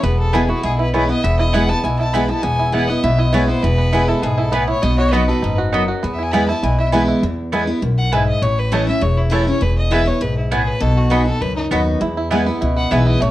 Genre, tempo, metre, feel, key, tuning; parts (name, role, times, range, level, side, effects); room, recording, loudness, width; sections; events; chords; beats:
bluegrass; 200 BPM; 4/4; straight; E major; A4 = 440 Hz
bluegrass banjo; melody; 0.0-7.2, 12.0-13.3 s; E3 to A4; -23 LUFS; right 3 dB
clear fiddle; melody; 0.0-13.3 s; D#4 to B5; -23 LUFS; left 2 dB
picked steel-string acoustic guitar; accompaniment; 0.0-13.3 s; E2 to F#4; -20 LUFS; equal
upright bass; bass; 0.0-13.3 s; E1 to E2; -19 LUFS; equal
mandolin; stabs; 0.3-13.0 s; A3 to B5; -22 LUFS; right 2 dB
light reverb; worn, warbling old tape, cassette tape, warbly pitch drift; -15 LUFS; side -14 dB against mid
0.0-7.2 A section; 7.2-13.3 B section
fiddle solo 7.2-13.3
0.0 E; 4.8 B; 6.0 E; 8.4 A; 9.6 E; 10.8 B; 12.0 E
| 0.03 0.33 0.63 0.93 | 1.23 1.53 1.83 2.13 | 2.43 2.73 3.03 3.33 | 3.63 3.93 4.23 4.53 | 4.83 5.13 5.43 5.73 | 6.03 6.33 6.63 6.93 | 7.23 7.53 7.83 8.12 | 8.42 8.72 9.02 9.32 | 9.62 9.92 10.22 10.52 | 10.82 11.12 11.42 11.72 | 12.02 12.31 12.62 12.91 | 13.21